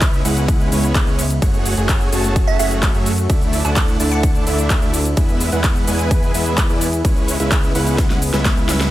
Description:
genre	EDM, festival progressive house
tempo	128 BPM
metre	4/4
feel	straight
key	unclear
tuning	A4 = 439 Hz
part	lush unison pad	sustained chords	0.0-8.9 s	C#3 to B4	-25 LUFS	equal	chorus, sidechain pumping
part	dense compressed supersaw	riff	0.0-8.9 s	G#3 to A5	-22 LUFS	right 1 dB	sidechain pumping, dub echo
part	fat analog bass	bass	0.0-8.9 s	F#1 to F#2	-21 LUFS	equal	sidechain pumping
part	big-room dance drum kit	drums	0.0-8.9 s	handclaps, hi-hat, ride cymbal, shaker, snare drum	-23 LUFS	equal	overdrive
part	electronic kick drum	drums	0.0-8.5 s	none	-17 LUFS	equal	overdrive
part	glassy wavetable pluck	melody	2.5-4.5 s	E5 to A5	-25 LUFS	right 6 dB	chorus, dub echo
room	light reverb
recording	none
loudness	-14 LUFS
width	side -15 dB against mid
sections	0.0-8.9 A section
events	drop 0.0-8.9; drum fill 8.0-8.9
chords	0.0 C#m7; 1.4 F#madd9; 3.3 Dsus2; 5.2 E; 7.0 C#m7

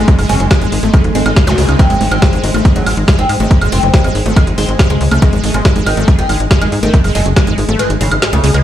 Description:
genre	psychedelic trance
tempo	140 BPM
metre	4/4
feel	straight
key	unclear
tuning	A4 = 439 Hz
part	oud	melody	0.0-8.5 s	C#3 to C#4	-19 LUFS	left 1 dB	phaser, sidechain pumping, tape echo
part	evolving wavetable pad	sustained chords	0.0-8.6 s	G#3	-23 LUFS	equal	ensemble chorus, built-in reverb, sidechain pumping
part	wide unison pluck	riff	0.0-8.6 s	G#3 to G#4	-19 LUFS	right 1 dB	auto-pan, sidechain pumping, dub echo
part	tight sequencer bass	bass	0.0-8.6 s	F#1 to G#2	-14 LUFS	equal	none
part	drum and bass drum kit	drums	0.1-8.6 s	hi-hat, snare drum, woodblock	-19 LUFS	right 1 dB	none
part	electronic kick drum	drums	0.1-7.5 s	none	-9 LUFS	equal	none
part	zap	sound effects	1.5-1.6 s	none	-23 LUFS	equal	none
room	little or no reverb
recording	played on a big sound system in a bare room, large studio reverb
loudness	-9 LUFS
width	side -12 dB against mid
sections	0.0-8.6 A section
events	drop 0.0-8.6; kick drops out 7.8-8.6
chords	0.0 G#5

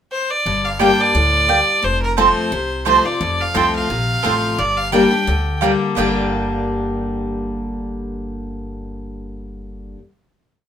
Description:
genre	bluegrass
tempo	174 BPM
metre	4/4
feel	straight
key	G minor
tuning	A4 = 440 Hz
part	bright fiddle	melody	0.1-5.6 s	Bb4 to G5	-18 LUFS	right 1 dB	none
part	picked steel-string acoustic guitar	accompaniment	0.5-10.0 s	F2 to G4	-21 LUFS	left 3 dB	none
part	upright bass	bass	0.5-9.9 s	F1 to D2	-25 LUFS	equal	none
part	mandolin	stabs	0.8-10.0 s	Bb3 to A5	-18 LUFS	right 6 dB	none
room	moderate small room ambience, RT60 0.5 s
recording	minimal, uncompressed stereo recording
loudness	-15 LUFS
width	side -8 dB against mid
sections	0.0-0.5 pickup bar; 0.5-6.0 A section; 6.0-8.7 final chord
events	none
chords	0.5 Gm; 1.8 F; 4.6 Gm

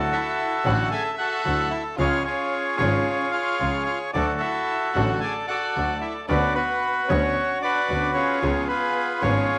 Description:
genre	tango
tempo	112 BPM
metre	4/4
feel	rubato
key	unclear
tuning	A4 = 440 Hz
part	bandoneon	melody	0.0-9.6 s	E#4 to G#5	-26 LUFS	equal	none
part	bright concert grand piano	accompaniment	0.0-9.4 s	G#1 to G#4	-32 LUFS	equal	none
part	warm chamber string section	stabs	0.0-9.4 s	C#4 to B4	-39 LUFS	equal	none
part	clear double bass	bass	0.0-9.4 s	G#1 to D2	-29 LUFS	equal	none
part	warm symphonic violin section	second line	0.1-9.6 s	B3 to G#4	-34 LUFS	equal	none
room	moderate echo chamber reverb, RT60 1.4 s, small room reverb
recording	none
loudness	-24 LUFS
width	mono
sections	0.0-9.6 A section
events	none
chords	0.0 Dadd9; 2.0 C#; 4.2 D; 6.3 Bmadd9/D; 8.4 C#7

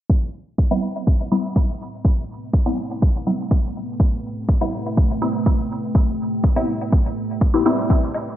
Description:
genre	dub techno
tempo	123 BPM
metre	4/4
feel	straight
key	A minor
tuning	A4 = 437 Hz
part	deep dark ambient pad	sustained chords	1.9-8.4 s	Ab3 to G5	-28 LUFS	right 1 dB	chorus, built-in reverb, sidechain pumping
part	electronic kick drum	drums	0.1-8.0 s	none	-17 LUFS	equal	overdrive
part	filtered dub chord stab	stabs	0.7-7.8 s	G3 to E4	-22 LUFS	left 1 dB	phaser, cassette tape, sidechain pumping, dub echo
part	woodblock	percussion	8.1-8.2 s	none	-28 LUFS	equal	sidechain pumping on perc
room	moderate lush hall reverb, RT60 1.8 s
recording	bright 1980s-style digital production, low-pass filter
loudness	-18 LUFS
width	side -12 dB against mid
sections	0.1-8.4 A section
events	filter sweep on synth stab 0.1-8.4; filter sweep on ambient pad 0.1-8.4; filter sweep 0.1-8.4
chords	0.1 Am9

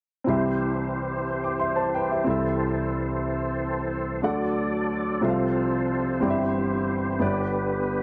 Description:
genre	gospel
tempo	61 BPM (dotted quarters)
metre	6/8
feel	straight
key	C major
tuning	A4 = 440 Hz
part	warm upright piano	accompaniment	0.2-8.0 s	G1 to D6	-27 LUFS	equal	none
part	tonewheel organ	sustained chords	0.3-8.0 s	C2 to D5	-31 LUFS	equal	fast rotary speaker, chorus vibrato
room	moderate echo chamber reverb, RT60 1.3 s, small room ambience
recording	none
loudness	-26 LUFS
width	mono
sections	0.3-8.0 A section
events	none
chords	0.3 C; 2.3 Am/C; 4.2 D; 5.2 F/C; 6.2 C/G; 7.2 G

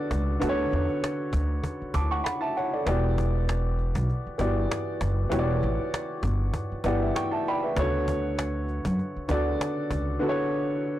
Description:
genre	hip hop, boom-bap hip-hop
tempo	98 BPM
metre	4/4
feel	swing 55% on 16ths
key	E dorian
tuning	A4 = 438 Hz
part	dark upright piano	accompaniment	0.0-11.0 s	C#3 to D6	-27 LUFS	equal	high-pass filter, low-pass filter
part	upright bass	bass	0.1-10.2 s	E1 to F#2	-27 LUFS	equal	transformer saturation
part	cajon	drums	0.1-10.1 s	none	-33 LUFS	equal	none
room	little or no reverb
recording	blown-out, overdriven recording, overdrive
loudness	-24 LUFS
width	side -13 dB against mid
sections	0.0-11.0 A section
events	none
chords	0.0 Bm7; 2.9 Em7; 7.8 Bm7

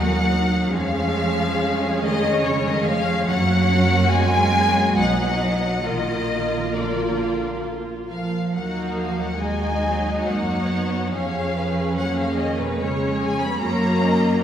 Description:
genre	classical, slow romantic movement for string orchestra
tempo	66-75 BPM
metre	3/4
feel	rubato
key	Eb minor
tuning	A4 = 436 Hz
part	clear symphonic violin section	melody	0.0-14.4 s	Cb5 to Cb6	-25 LUFS	left 2 dB	none
part	warm symphonic violin section	second line	0.0-14.4 s	D#4 to D#5	-28 LUFS	left 2 dB	none
part	rich symphonic viola section	accompaniment	0.0-14.4 s	F#3 to F4	-25 LUFS	right 1 dB	none
part	clear studio double bass section	bass	0.0-14.4 s	Bb1 to Gb2	-26 LUFS	right 2 dB	none
part	rich symphonic cello section	bass	0.0-14.4 s	Cb3 to Cb4	-25 LUFS	right 1 dB	none
room	wet recital hall reverb, RT60 1.8 s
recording	heard from further back in the room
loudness	-19 LUFS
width	side -9 dB against mid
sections	0.0-14.4 A section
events	none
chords	0.0 Ebm; 0.7 Db/F; 3.3 Gb; 5.0 B; 5.9 Bb; 8.5 Ebm; 11.1 Db/F; 13.6 Gb

